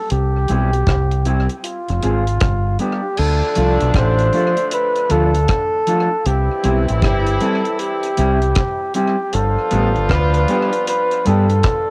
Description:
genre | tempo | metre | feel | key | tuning
roots reggae | 78 BPM | 4/4 | swing 64% on 16ths | C major | A4 = 440 Hz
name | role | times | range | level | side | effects
warm flugelhorn | melody | 0.0-11.9 s | F4 to C5 | -22 LUFS | equal | cassette tape, dub echo
deep dub fingered electric bass | bass | 0.1-11.6 s | F1 to G2 | -20 LUFS | equal | transformer saturation
deep reggae drum kit | drums | 0.1-11.9 s | crash cymbal, hi-hat, kick drum, rim click | -24 LUFS | equal | cassette tape
mellow electric guitar | accompaniment | 0.5-11.5 s | F3 to Ab4 | -25 LUFS | equal | dub echo
warm horn section | second line | 3.2-11.9 s | D3 to F4 | -26 LUFS | equal | dub echo
room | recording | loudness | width
moderate booth ambience, RT60 0.2 s | home recording on cassette | -17 LUFS | mono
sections
0.0-3.2 A section; 3.2-11.9 B section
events
none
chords
0.1 C; 1.6 Fm; 2.4 G; 3.2 Dm; 6.3 C; 9.3 G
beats
| 0.10 0.87 1.64 2.41 | 3.18 3.95 4.72 5.49 | 6.25 7.02 7.79 8.56 | 9.33 10.10 10.86 11.63

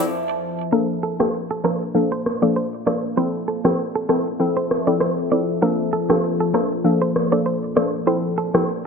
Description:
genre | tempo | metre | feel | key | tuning
afrobeats | 98 BPM | 4/4 | swing 55% on 16ths | unclear | A4 = 435 Hz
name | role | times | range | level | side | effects
glassy wavetable pluck | accompaniment | 0.0-8.7 s | F3 to A4 | -21 LUFS | left 1 dB | chorus
deep dark ambient pad | sustained chords | 0.0-8.9 s | F3 to A5 | -25 LUFS | left 2 dB | chorus, built-in reverb
direct-recorded clean electric guitar | riff | 0.0-8.6 s | G4 to D5 | -26 LUFS | right 4 dB | digital delay
electronic rim click | drums | 1.2-8.7 s | none | -24 LUFS | equal | none
room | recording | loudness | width
light reverb, digital ambience | low-pass filter | -18 LUFS | side -5 dB against mid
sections
0.7-8.9 A section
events
break 0.1-0.7; filter sweep 0.7-8.9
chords
0.0 Fmaj7; 0.7 Bbmaj7; 3.2 Fmaj7; 5.6 Bbmaj7; 8.1 Fmaj7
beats
0.11 | 0.72 1.33 1.95 2.56 | 3.17 3.78 4.40 5.01 | 5.62 6.23 6.84 7.46 | 8.07 8.68

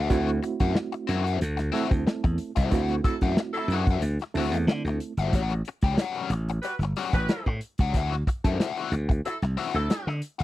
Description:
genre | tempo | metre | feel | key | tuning
funk | 92 BPM | 4/4 | straight | unclear | A4 = 440 Hz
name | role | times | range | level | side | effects
biting overdriven guitar | accompaniment | 0.0-10.4 s | G3 to A4 | -30 LUFS | left 7 dB | wah
barky reed electric piano | stabs | 0.0-5.1 s | A3 to A4 | -30 LUFS | right 6 dB | overdrive, fast tremolo
slap bass | bass | 0.0-10.4 s | G1 to D3 | -26 LUFS | equal | none
warm soul drum kit | drums | 0.1-10.4 s | hi-hat, kick drum, snare drum | -25 LUFS | equal | none
mellow horn section | second line | 3.0-10.2 s | F#3 to B4 | -30 LUFS | equal | none
room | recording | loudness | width
little or no reverb | dry, close 1970s-style studio recording | -24 LUFS | side -15 dB against mid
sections
0.0-5.3 A section; 5.3-10.4 B section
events
band accent 2.7-5.3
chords
0.0 D9; 5.3 A6; 7.9 D9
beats
| 0.11 0.76 1.41 2.07 | 2.72 3.37 4.03 4.68 | 5.33 5.98 6.64 7.29 | 7.94 8.60 9.25 9.90

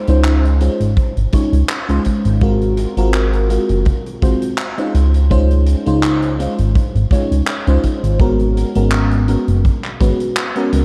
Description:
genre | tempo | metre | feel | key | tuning
vaporwave | 83 BPM | 4/4 | swing 54% on 16ths | Db major | A4 = 440 Hz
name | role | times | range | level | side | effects
FM electric piano with soft pad layer | accompaniment | 0.0-10.8 s | Ab3 to Db5 | -20 LUFS | equal | phaser, lush chorus, cassette tape, analog delay
chorused synth bass | bass | 0.1-10.8 s | Gb1 to Db2 | -17 LUFS | equal | none
swinging big-band drum kit | drums | 0.1-10.8 s | handclaps, hi-hat | -27 LUFS | equal | none
kick drum | drums | 1.0-10.2 s | none | -19 LUFS | equal | none
room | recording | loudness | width
moderate plate reverb, RT60 2.6 s | dreamy mix soaked in reverb, cassette tape | -15 LUFS | mono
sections
0.0-10.8 A section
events
none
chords
0.0 Dbmaj9; 2.4 Ab13; 4.9 Dbmaj9; 8.2 Abm11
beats
0.25 0.97 1.70 | 2.42 3.14 3.86 4.59 | 5.31 6.03 6.75 7.48 | 8.20 8.92 9.65 10.37

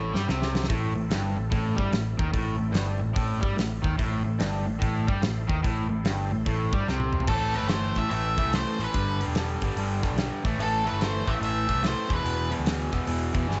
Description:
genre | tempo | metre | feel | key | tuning
blues rock power trio and southern rock | 145 BPM | 4/4 | swing 64% on 8ths | A minor | A4 = 440 Hz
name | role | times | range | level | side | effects
overdriven tonewheel organ | sustained chords | 0.0-7.3 s | C4 to C5 | -44 LUFS | equal | none
overdriven semi-hollow guitar | riff | 0.0-13.6 s | E2 to A3 | -32 LUFS | equal | spring reverb
overdriven picked electric bass | bass | 0.0-13.6 s | E1 to G2 | -32 LUFS | equal | none
big rock drum kit | drums | 0.2-13.6 s | crash cymbal, hi-hat, kick drum, snare drum, toms | -32 LUFS | equal | none
octave-fuzz lead guitar | melody | 7.3-12.5 s | A4 to E5 | -32 LUFS | equal | distortion
room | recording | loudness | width
light reverb, small room ambience | nothing above 7.9 kHz | -27 LUFS | mono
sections
0.0-7.3 A section; 7.3-13.6 B section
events
drum fill 0.0-0.7, 6.9-7.3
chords
0.0 Am; 8.9 G5; 10.4 Am; 12.0 E5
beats
0.29 | 0.70 1.11 1.52 1.93 | 2.34 2.75 3.17 3.58 | 3.99 4.40 4.81 5.22 | 5.64 6.05 6.46 6.87 | 7.29 7.70 8.11 8.53 | 8.94 9.35 9.77 10.18 | 10.59 11.01 11.42 11.83 | 12.25 12.66 13.07 13.49

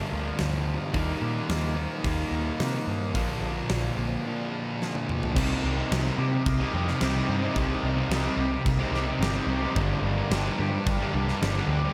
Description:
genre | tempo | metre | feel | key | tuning
rock, shoegaze and dream pop | 109 BPM | 4/4 | straight | unclear | A4 = 442 Hz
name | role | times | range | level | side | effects
twangy electric guitar | arpeggios | 0.0-11.9 s | Eb3 to G4 | -38 LUFS | equal | lush chorus, analog delay
overdriven semi-hollow guitar | riff | 0.0-11.9 s | G2 to G4 | -34 LUFS | equal | reverse reverb
thick fuzz guitar | riff | 0.0-11.9 s | G2 to Eb4 | -33 LUFS | equal | distortion, subtle chorus
vintage muted picked electric bass | bass | 0.1-11.9 s | G1 to C3 | -32 LUFS | equal | none
huge arena drum kit | drums | 0.4-11.6 s | crash cymbal, hi-hat, kick drum, snare drum, toms | -34 LUFS | equal | none
room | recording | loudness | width
moderate huge ambient reverb, RT60 4.7 s | dreamy mix soaked in reverb | -27 LUFS | mono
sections
0.0-5.4 A section; 5.4-11.9 A section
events
drum fill 4.8-5.4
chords
0.0 Gm7; 0.9 Eb; 3.2 Bb; 5.4 Cm7; 9.8 Gm7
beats
0.39 | 0.95 1.50 2.05 2.60 | 3.16 3.71 4.26 4.81 | 5.36 5.91 6.46 7.02 | 7.57 8.12 8.67 9.22 | 9.77 10.32 10.87 11.42

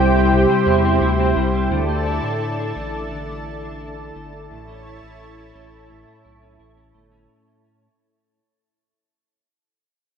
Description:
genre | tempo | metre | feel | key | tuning
dream pop | 86 BPM | 4/4 | straight | unclear | A4 = 440 Hz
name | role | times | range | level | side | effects
lush unison pad | sustained chords | 0.0-7.3 s | E4 to A5 | -20 LUFS | right 2 dB | chorus
clean electric guitar | arpeggios | 0.0-7.9 s | A2 to E4 | -24 LUFS | left 6 dB | ensemble chorus, digital delay
saturated sub bass | bass | 0.0-7.3 s | G1 to A2 | -24 LUFS | equal | none
room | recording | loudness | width
moderate small room reverb, RT60 0.5 s | rough home demo mix | -16 LUFS | side -7 dB against mid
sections
0.0-7.3 A section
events
fade-out 0.0-7.3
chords
0.0 C; 1.7 Dsus2; 4.5 A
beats
0.31 1.01 | 1.71 2.41 3.10 3.80 | 4.50 5.20 5.90 6.59

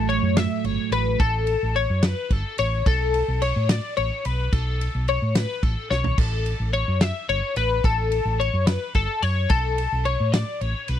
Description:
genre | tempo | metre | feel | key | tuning
math rock and midwest emo | 72 BPM (dotted quarters) | 6/8 | straight | unclear | A4 = 440 Hz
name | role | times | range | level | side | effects
twelve-string electric guitar | accompaniment | 0.0-1.2 s | A2 to F#3 | -25 LUFS | right 16 dB | phaser
twelve-string electric guitar | arpeggios | 0.0-11.0 s | A4 to E5 | -25 LUFS | left 5 dB | analog chorus
hollow-body short-scale fingered electric bass | bass | 0.0-11.0 s | G1 to A2 | -24 LUFS | equal | none
loose indie drum kit | drums | 0.1-11.0 s | crash cymbal, kick drum, ride cymbal, snare drum, toms | -26 LUFS | equal | none
room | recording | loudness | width
little or no reverb | dry, close 1970s-style studio recording | -20 LUFS | side -10 dB against mid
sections
0.0-11.0 A section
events
drum fill 5.9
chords
0.0 A69; 2.9 B7sus2; 6.2 A69; 9.5 Bm9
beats
0.37 | 1.20 2.03 | 2.86 3.69 | 4.52 5.34 | 6.17 7.00 | 7.83 8.66 | 9.49 10.32

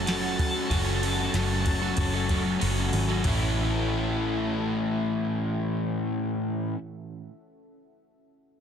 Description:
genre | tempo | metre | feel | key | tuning
rock, shoegaze and dream pop | 94 BPM | 4/4 | straight | A major | A4 = 440 Hz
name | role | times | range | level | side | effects
octave-fuzz lead guitar | melody | 0.0-2.6 s | A5 | -34 LUFS | right 1 dB | distortion, analog delay
deep dark ambient pad | sustained chords | 0.0-6.3 s | C#4 to F#5 | -40 LUFS | left 2 dB | chorus, built-in reverb
direct-recorded clean electric guitar | arpeggios | 0.0-6.8 s | E3 to A4 | -38 LUFS | left 10 dB | ensemble chorus, analog delay
cranked stack guitar | riff | 0.0-6.8 s | A2 to A4 | -31 LUFS | left 2 dB | overdrive
crunchy overdriven guitar | riff | 0.0-6.8 s | A2 to A4 | -32 LUFS | left 11 dB | wide subtle chorus
crunchy overdriven guitar | riff | 0.0-6.8 s | A2 to A4 | -32 LUFS | right 8 dB | reverse reverb
vintage muted picked electric bass | bass | 0.0-6.3 s | F#1 to A1 | -29 LUFS | equal | none
soft vintage rhythm box | drums | 0.1-3.4 s | crash cymbal, kick drum, snare drum, toms | -31 LUFS | equal | none
room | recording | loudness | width
digital ambience | dense, heavily limited modern master | -24 LUFS | side -8 dB against mid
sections
0.0-3.2 A section; 3.2-5.8 B section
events
kick and snare drop out 2.6-3.2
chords
0.0 F#m; 3.2 A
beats
0.07 | 0.71 1.34 1.98 2.61 | 3.25 3.88 4.52 5.15

